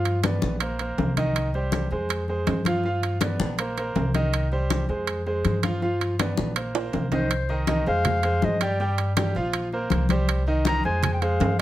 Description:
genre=latin, Cuban son and guajira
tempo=161 BPM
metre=4/4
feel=straight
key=C minor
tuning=A4 = 440 Hz
part: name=bright baby grand piano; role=arpeggios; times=0.0-11.6 s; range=Eb3 to G5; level=-27 LUFS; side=right 1 dB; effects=none
part: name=upright bass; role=bass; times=0.0-11.6 s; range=Bb1 to G2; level=-26 LUFS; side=equal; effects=none
part: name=congas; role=percussion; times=0.1-11.6 s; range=none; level=-28 LUFS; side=left 3 dB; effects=none
part: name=timbales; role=percussion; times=0.1-11.6 s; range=none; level=-30 LUFS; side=right 7 dB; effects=none
part: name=mellow clarinet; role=melody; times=7.1-11.6 s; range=C5 to Bb5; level=-26 LUFS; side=left 2 dB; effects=none
room=light reverb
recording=close, detailed microphones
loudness=-22 LUFS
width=side -14 dB against mid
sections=0.0-7.3 A section; 7.3-11.6 B section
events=drum fill 6.8-7.3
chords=0.0 G7; 0.6 Bbsus2; 1.4 Cm; 2.1 Fm; 2.8 G7; 3.6 Bbsus2; 4.3 Cm; 5.1 Fm; 5.8 G7; 6.6 Bbsus2; 7.3 Cm; 8.1 Fm; 8.8 Bb6; 9.5 Bbsus2; 10.3 Cm; 11.0 Fm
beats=0.24 0.61 0.98 | 1.36 1.73 2.10 2.47 | 2.84 3.22 3.59 3.96 | 4.33 4.70 5.08 5.45 | 5.82 6.19 6.57 6.94 | 7.31 7.68 8.05 8.43 | 8.80 9.17 9.54 9.91 | 10.29 10.66 11.03 11.40

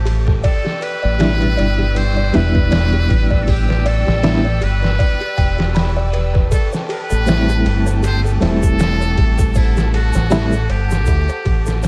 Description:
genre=trip hop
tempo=79 BPM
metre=4/4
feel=swing 56% on 16ths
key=A dorian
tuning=A4 = 439 Hz
part: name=trumpet with metal mute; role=melody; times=0.0-11.9 s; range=E4 to C5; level=-27 LUFS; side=equal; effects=tape echo
part: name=dark symphonic violin section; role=sustained chords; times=0.0-11.9 s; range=A4 to E6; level=-32 LUFS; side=equal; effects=none
part: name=music box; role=arpeggios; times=0.0-11.9 s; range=G4 to B5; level=-28 LUFS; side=equal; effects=vintage 12-bit sampler grit, dub echo
part: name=deep dub fingered electric bass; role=bass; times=0.0-11.9 s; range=E1 to D2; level=-19 LUFS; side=equal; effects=none
part: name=trip hop sampler-style drum kit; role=drums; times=0.1-11.9 s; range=hi-hat, kick drum, ride cymbal, snare drum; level=-22 LUFS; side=equal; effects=vintage 12-bit sampler grit
part: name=bright reed electric piano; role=accompaniment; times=1.2-10.5 s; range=B2 to E4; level=-23 LUFS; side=equal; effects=fast tremolo, tape echo
part: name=egg shaker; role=percussion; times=6.5-11.9 s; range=none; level=-39 LUFS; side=equal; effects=none
room=small room reverb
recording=echo-heavy mix, vinyl crackle, lossy compression artefacts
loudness=-16 LUFS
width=mono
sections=0.0-11.9 A section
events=fade-out 10.6-11.9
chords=0.4 Em7; 6.5 Am7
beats=| 0.44 1.20 1.96 2.72 | 3.48 4.24 5.00 5.75 | 6.51 7.27 8.03 8.79 | 9.55 10.31 11.07 11.83

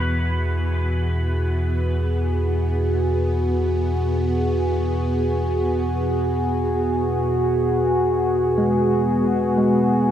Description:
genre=ambient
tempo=free time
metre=none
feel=none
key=E major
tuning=A4 = 440 Hz
part: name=pedal steel guitar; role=melody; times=0.0-2.2 s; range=B4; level=-34 LUFS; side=equal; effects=diffuse ambient delay
part: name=warm analog pad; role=sustained chords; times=0.0-10.1 s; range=B2 to G#4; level=-21 LUFS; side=equal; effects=lush chorus
part: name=warm sub bass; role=bass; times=0.0-10.1 s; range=E2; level=-24 LUFS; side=equal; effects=none
part: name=bowed-like drone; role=drone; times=0.0-10.1 s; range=E3 to B3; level=-33 LUFS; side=equal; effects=built-in reverb, phaser
part: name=tine electric piano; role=arpeggios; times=8.6-10.1 s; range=G#3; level=-21 LUFS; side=right 1 dB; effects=diffuse ambient delay
room=wet cathedral reverb, RT60 6.9 s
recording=in a vast, echoing space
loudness=-19 LUFS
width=side -10 dB against mid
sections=0.0-10.1 A section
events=fade-out on sub bass 0.0-10.1; fade-out on synth drone 0.0-10.1; filter sweep on analog synth pad 0.0-10.1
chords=0.0 E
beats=free time

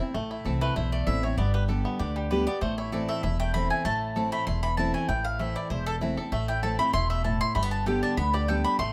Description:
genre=bluegrass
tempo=194 BPM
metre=4/4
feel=straight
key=A minor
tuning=A4 = 440 Hz
part: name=bluegrass banjo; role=melody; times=0.0-8.9 s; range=E3 to A4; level=-37 LUFS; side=equal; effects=slapback echo
part: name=picked steel-string acoustic guitar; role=accompaniment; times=0.0-8.9 s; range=E2 to G4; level=-33 LUFS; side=equal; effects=none
part: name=upright bass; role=bass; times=0.1-8.9 s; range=E1 to D2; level=-32 LUFS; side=equal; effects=none
part: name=mandolin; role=stabs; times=0.6-8.9 s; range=G4 to C6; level=-32 LUFS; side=equal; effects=none
room=little or no reverb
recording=rough home demo mix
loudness=-27 LUFS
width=mono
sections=0.1-8.9 A section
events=mandolin solo 0.1-8.9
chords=0.1 Am; 1.4 G; 2.6 Am; 7.6 G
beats=| 0.14 0.45 0.76 1.07 | 1.38 1.69 2.00 2.31 | 2.62 2.92 3.23 3.54 | 3.85 4.16 4.47 4.78 | 5.09 5.40 5.71 6.01 | 6.32 6.63 6.94 7.25 | 7.56 7.87 8.18 8.48 | 8.79

